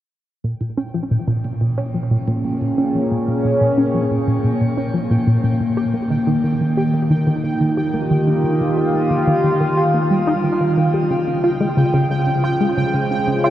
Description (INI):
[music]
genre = ambient, sequencer-driven space music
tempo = 90 BPM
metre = 4/4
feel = straight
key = Bb dorian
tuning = A4 = 440 Hz
[part]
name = sweeping resonant pad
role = sustained chords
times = 0.4-13.5 s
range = Bb2 to C5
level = -18 LUFS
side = equal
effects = chorus, shimmer reverb
[part]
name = tight sequenced synth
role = riff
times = 0.4-13.5 s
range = Bb2 to G4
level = -19 LUFS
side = equal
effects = chorus, phaser, analog delay, shimmer reverb
[part]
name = pulsing gated texture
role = texture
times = 0.8-13.5 s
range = G5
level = -30 LUFS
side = right 3 dB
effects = chorus, built-in reverb, shimmer reverb
[sound]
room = wet huge ambient reverb, RT60 7.4 s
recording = worn, warbling old tape, cassette tape, warbly pitch drift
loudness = -16 LUFS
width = side -12 dB against mid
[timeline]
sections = 0.4-13.5 A section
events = fade-in on synth texture 0.4-13.5; filter sweep on synth arpeggio sound 0.4-13.5; filter sweep on analog synth pad 0.4-13.5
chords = 0.4 Bbm7; 5.8 Ebadd9; 11.1 Dbmaj7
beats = | 0.44 1.11 1.78 2.44 | 3.11 3.78 4.44 5.11 | 5.78 6.44 7.11 7.78 | 8.44 9.11 9.78 10.44 | 11.11 11.78 12.44 13.11